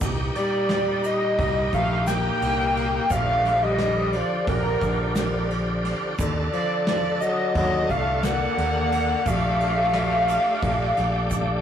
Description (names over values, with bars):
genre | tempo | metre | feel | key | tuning
progressive instrumental, band music in an uneven meter | 175 BPM (eighths) | 9/8 | straight | Bb major | A4 = 440 Hz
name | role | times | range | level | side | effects
bright tonewheel organ | accompaniment | 0.0-11.6 s | Bb2 to A4 | -29 LUFS | equal | overdrive, chorus vibrato, fast rotary speaker
picked electric bass | bass | 0.0-11.6 s | Bb1 to Eb2 | -27 LUFS | equal | none
soft brush drum kit | drums | 0.0-11.5 s | crash cymbal, kick drum, ride cymbal, snare drum | -30 LUFS | right 1 dB | none
egg shaker | percussion | 0.0-11.6 s | none | -43 LUFS | right 5 dB | none
hollow square lead | melody | 0.4-11.6 s | Bb4 to G5 | -24 LUFS | equal | chorus
growling alto saxophone | second line | 0.4-11.6 s | D3 to Bb3 | -28 LUFS | left 2 dB | none
room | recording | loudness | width
moderate small room reverb, RT60 0.5 s | rough rehearsal-room recording, warm saturation | -20 LUFS | side -9 dB against mid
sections
0.0-11.6 A section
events
drum fill 11.3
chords
0.0 Cm7; 3.1 Bb; 6.2 Ebm; 9.3 Bbmaj7